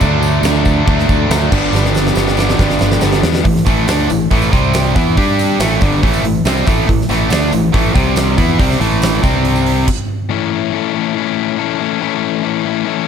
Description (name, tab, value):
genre	classic rock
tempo	140 BPM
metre	4/4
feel	straight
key	unclear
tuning	A4 = 440 Hz
part	crunchy overdriven guitar	riff	0.0-13.1 s	G2 to G4	-17 LUFS	left 13 dB	none
part	distorted electric guitar	riff	0.0-9.9 s	G2 to G4	-17 LUFS	right 13 dB	overdrive
part	fingered electric bass	bass	0.0-9.8 s	G1 to G2	-17 LUFS	equal	none
part	huge arena drum kit	drums	0.0-10.0 s	crash cymbal, hi-hat, kick drum, snare drum	-16 LUFS	right 1 dB	none
part	tambourine	percussion	0.0-9.8 s	none	-34 LUFS	right 8 dB	none
room	studio reverb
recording	none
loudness	-12 LUFS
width	side -7 dB against mid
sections	0.0-3.4 A section; 3.4-10.3 B section; 10.3-13.1 C section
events	drum fill 1.7-3.4; stop 9.9-10.3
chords	0.0 D; 1.5 G; 3.4 A5; 4.5 C5; 5.0 E5; 5.2 G5; 5.6 A5; 8.0 C5; 8.4 A5; 9.2 C5; 9.9 N.C.; 10.3 A